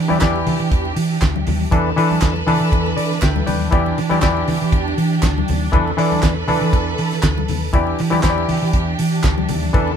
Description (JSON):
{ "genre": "disco", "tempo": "120 BPM", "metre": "4/4", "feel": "straight", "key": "E minor", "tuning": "A4 = 440 Hz", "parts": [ { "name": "clear symphonic string section", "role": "sustained chords", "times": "0.0-10.0 s", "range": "E3 to B4", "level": "-24 LUFS", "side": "right 1 dB", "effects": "none" }, { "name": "hollow-body short-scale fingered electric bass", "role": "bass", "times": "0.0-9.9 s", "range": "D2 to E3", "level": "-20 LUFS", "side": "right 2 dB", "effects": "none" }, { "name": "mellow clav", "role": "accompaniment", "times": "0.1-9.9 s", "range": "E3 to G5", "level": "-20 LUFS", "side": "left 2 dB", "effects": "none" }, { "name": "congas", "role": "percussion", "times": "0.1-10.0 s", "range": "none", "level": "-26 LUFS", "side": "left 6 dB", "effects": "none" }, { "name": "damped 70s drum kit", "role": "drums", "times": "0.2-9.9 s", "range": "handclaps, hi-hat, kick drum, snare drum", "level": "-20 LUFS", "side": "right 1 dB", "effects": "none" }, { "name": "group handclap", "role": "percussion", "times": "0.2-9.4 s", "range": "none", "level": "-32 LUFS", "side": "right 4 dB", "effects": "none" } ], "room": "moderate small room ambience, RT60 0.5 s", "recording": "band playing live in one room", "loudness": "-15 LUFS", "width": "side -8 dB against mid", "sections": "0.0-10.0 A section", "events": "clav fill 2.7-3.7", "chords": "0.0 Em7; 1.7 G69; 3.7 Em7; 5.7 Asus24; 7.7 Em7" }